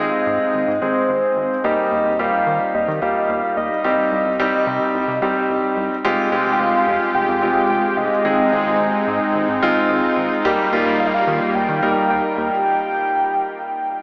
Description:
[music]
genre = pop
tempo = 109 BPM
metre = 4/4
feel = straight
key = F minor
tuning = A4 = 439 Hz
[part]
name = soft octave-layered synth lead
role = melody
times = 0.0-14.0 s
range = C5 to G5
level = -23 LUFS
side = equal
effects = chorus, tape echo
[part]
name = clear baby grand piano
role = accompaniment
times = 0.0-12.5 s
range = G3 to Bb4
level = -22 LUFS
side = equal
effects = none
[part]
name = rubbery square bass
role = bass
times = 0.0-12.5 s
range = F1 to Eb3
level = -32 LUFS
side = equal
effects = none
[part]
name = brassy analog pad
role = sustained chords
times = 6.0-12.6 s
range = G3 to G4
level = -25 LUFS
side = equal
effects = chorus
[sound]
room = wet huge ambient reverb, RT60 7.2 s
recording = dreamy mix soaked in reverb, small speaker sound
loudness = -19 LUFS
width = mono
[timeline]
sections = 0.0-6.0 A section; 6.0-14.0 B section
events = stop 12.7-14.0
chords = 0.0 Ab; 1.6 Eb; 3.8 Cm; 6.0 Fmadd9; 8.2 Ab; 10.4 Eb

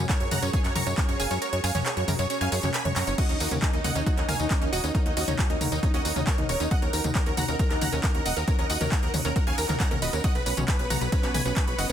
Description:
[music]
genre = uplifting trance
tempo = 136 BPM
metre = 4/4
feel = straight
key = Eb minor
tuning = A4 = 440 Hz
[part]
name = lush unison pad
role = sustained chords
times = 0.0-11.9 s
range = B3 to Gb5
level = -36 LUFS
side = equal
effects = chorus, phaser, sidechain pumping
[part]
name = analog pluck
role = arpeggios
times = 0.0-11.9 s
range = Db4 to C#5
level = -35 LUFS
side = right 4 dB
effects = lush chorus, sidechain pumping, digital delay
[part]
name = tight sequencer bass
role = bass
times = 0.0-11.9 s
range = Eb1 to Gb2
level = -30 LUFS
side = equal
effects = sidechain pumping
[part]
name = supersaw stab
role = melody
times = 0.1-11.9 s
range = Eb4 to Db6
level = -30 LUFS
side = right 1 dB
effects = sidechain pumping, digital delay
[part]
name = clear grand piano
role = second line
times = 0.1-11.9 s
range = Eb4 to Db6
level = -39 LUFS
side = equal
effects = none
[part]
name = big-room dance drum kit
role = drums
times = 0.1-11.9 s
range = crash cymbal, handclaps, hi-hat, ride cymbal, tambourine, toms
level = -30 LUFS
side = left 2 dB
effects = none
[part]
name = electronic kick drum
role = drums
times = 0.1-11.7 s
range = none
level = -25 LUFS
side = equal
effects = none
[sound]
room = little or no reverb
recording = dense, heavily limited modern master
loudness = -23 LUFS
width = side -10 dB against mid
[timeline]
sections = 0.0-11.9 A section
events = kick drops out 1.4-3.2; drum fill 3.0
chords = 0.0 Gbadd9; 3.2 Ebm7; 10.2 Bsus2

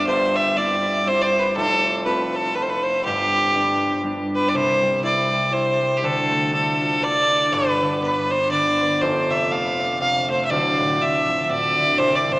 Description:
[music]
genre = celtic folk, Celtic waltz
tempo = 121 BPM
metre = 3/4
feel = swing 58% on 8ths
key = G mixolydian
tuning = A4 = 445 Hz
[part]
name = clear fiddle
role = melody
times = 0.0-12.4 s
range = G4 to F5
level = -18 LUFS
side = equal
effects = none
[part]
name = concert harp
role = accompaniment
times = 0.0-12.4 s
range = D1 to F4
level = -24 LUFS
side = equal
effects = none
[sound]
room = wet cathedral reverb, RT60 5.4 s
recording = recorded in a church or concert hall, small speaker sound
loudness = -18 LUFS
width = side -21 dB against mid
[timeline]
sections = 0.0-4.5 A section; 4.5-12.4 B section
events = none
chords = 0.1 C/G; 1.6 F; 3.1 G; 4.5 C; 6.0 Dm; 7.5 G; 9.0 F; 10.5 Dm

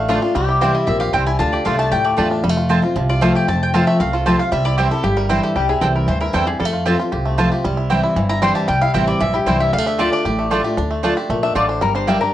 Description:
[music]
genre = bluegrass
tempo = 230 BPM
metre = 4/4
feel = straight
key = unclear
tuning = A4 = 440 Hz
[part]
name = bluegrass banjo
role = melody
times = 0.0-12.3 s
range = D3 to G4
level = -23 LUFS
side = right 2 dB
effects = none
[part]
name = mandolin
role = melody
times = 0.0-10.7 s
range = G4 to C6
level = -22 LUFS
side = left 2 dB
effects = none
[part]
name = lap resonator guitar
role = second line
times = 0.0-2.3, 11.4-12.3 s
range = F4 to E5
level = -21 LUFS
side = left 4 dB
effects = none
[part]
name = picked steel-string acoustic guitar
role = accompaniment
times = 0.0-12.3 s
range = F2 to G4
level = -20 LUFS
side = left 1 dB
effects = none
[part]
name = upright bass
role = bass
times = 0.0-12.2 s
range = F1 to F2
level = -22 LUFS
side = right 1 dB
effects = none
[part]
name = mandolin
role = stabs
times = 0.1-12.2 s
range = A3 to A5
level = -21 LUFS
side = right 4 dB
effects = none
[sound]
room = moderate studio reverb, RT60 0.5 s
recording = worn, warbling old tape, cassette tape, warbly pitch drift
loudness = -15 LUFS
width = side -12 dB against mid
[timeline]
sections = 0.0-2.4 A section; 2.4-10.8 B section; 10.8-12.3 C section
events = resonator guitar played with a steel bar solo 10.8-12.3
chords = 0.3 C; 1.4 Dm; 2.4 F; 4.5 C; 6.6 F; 7.6 C; 9.7 Dm; 11.8 Gm

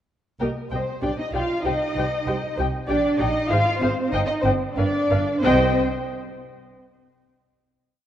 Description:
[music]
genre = quick classical-period movement for string orchestra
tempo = 96 BPM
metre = 2/4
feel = straight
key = C minor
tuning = A4 = 436 Hz
[part]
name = muted symphonic violin section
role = melody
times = 0.4-5.8 s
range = F5 to G5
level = -30 LUFS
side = left 5 dB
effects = none
[part]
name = muted symphonic violin section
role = second line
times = 0.4-5.8 s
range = Bb4 to F5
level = -27 LUFS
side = left 3 dB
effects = none
[part]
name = muted chamber viola section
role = accompaniment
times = 0.4-5.8 s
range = G4 to Eb5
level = -28 LUFS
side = equal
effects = none
[part]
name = muted studio cello section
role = bass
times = 0.4-5.8 s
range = Bb3 to F4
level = -25 LUFS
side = right 2 dB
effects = none
[part]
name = muted symphonic double bass section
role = bass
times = 0.4-5.8 s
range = G1 to C2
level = -27 LUFS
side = right 2 dB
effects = none
[sound]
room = moderate scoring stage reverb, RT60 2.0 s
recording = worn, warbling old tape, cassette tape, warbly pitch drift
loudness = -20 LUFS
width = side -10 dB against mid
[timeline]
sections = 0.4-5.4 A section; 5.4-6.7 final chord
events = none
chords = 0.4 Cm; 1.0 G; 1.7 Cm; 2.9 Gm/Bb; 3.5 Fm; 4.1 Cm; 4.8 G; 5.4 Cm

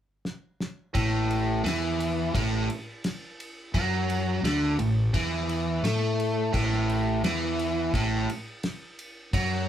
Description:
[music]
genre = psychedelic rock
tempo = 86 BPM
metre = 4/4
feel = straight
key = unclear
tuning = A4 = 440 Hz
[part]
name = cloth-damped thuddy drum kit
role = drums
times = 0.3-9.5 s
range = crash cymbal, kick drum, ride cymbal, snare drum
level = -33 LUFS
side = equal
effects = none
[part]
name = biting overdriven guitar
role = riff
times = 0.9-9.7 s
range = A2 to A3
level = -26 LUFS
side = right 1 dB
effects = none
[part]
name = fuzz fingered electric bass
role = bass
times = 1.0-9.7 s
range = A1 to A2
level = -29 LUFS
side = left 1 dB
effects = overdrive
[sound]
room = moderate studio ambience, RT60 0.5 s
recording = band playing live in one room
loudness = -25 LUFS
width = side -10 dB against mid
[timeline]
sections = 0.9-9.7 A section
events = drum fill 0.2-0.9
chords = 0.0 N.C.; 0.9 A5

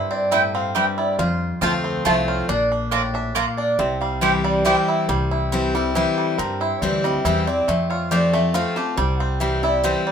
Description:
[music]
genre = bluegrass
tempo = 139 BPM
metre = 3/4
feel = straight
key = C mixolydian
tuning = A4 = 436 Hz
[part]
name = bluegrass banjo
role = melody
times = 0.0-10.1 s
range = G3 to G4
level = -24 LUFS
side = right 2 dB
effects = none
[part]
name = lap resonator guitar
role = melody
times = 0.0-10.1 s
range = G4 to A5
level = -25 LUFS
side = equal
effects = none
[part]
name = picked steel-string acoustic guitar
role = accompaniment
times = 0.0-10.1 s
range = F2 to F4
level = -23 LUFS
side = left 2 dB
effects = none
[part]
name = upright bass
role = bass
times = 0.0-9.9 s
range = Bb1 to G2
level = -27 LUFS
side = equal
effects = none
[part]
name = mandolin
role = stabs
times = 0.3-4.8 s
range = Bb3 to Bb5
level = -21 LUFS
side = right 2 dB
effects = none
[sound]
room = moderate studio reverb, RT60 0.6 s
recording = minimal, uncompressed stereo recording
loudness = -18 LUFS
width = side -7 dB against mid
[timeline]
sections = 0.0-5.1 A section; 5.1-10.1 A section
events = none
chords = 0.0 C; 1.2 F; 2.5 Bb; 3.8 C; 7.7 F; 9.0 C

